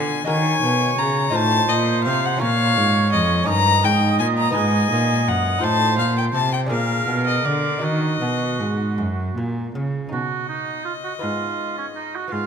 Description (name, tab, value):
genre	classical, baroque-style sonata movement with continuo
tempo	55 BPM (dotted quarters)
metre	6/8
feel	rubato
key	Eb minor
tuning	A4 = 440 Hz
part	warm violin	melody	0.0-12.5 s	D5 to Bb5	-22 LUFS	left 6 dB	none
part	lute	accompaniment	0.0-12.5 s	F2 to C5	-28 LUFS	left 1 dB	none
part	rich cello	bass	0.0-12.5 s	F2 to Eb3	-22 LUFS	right 1 dB	none
part	warm oboe	second line	0.3-12.5 s	Db4 to Eb5	-25 LUFS	right 6 dB	none
room	moderate concert hall reverb, RT60 2.4 s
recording	none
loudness	-18 LUFS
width	side -7 dB against mid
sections	0.0-10.1 A section; 10.1-12.5 A section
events	none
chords	0.3 Ebm; 1.3 F7/A; 2.4 Bbm; 3.5 Eb7/G; 4.6 Abm; 5.6 F7/A; 6.7 Bb7; 7.8 Ebm; 10.1 B; 11.2 Abm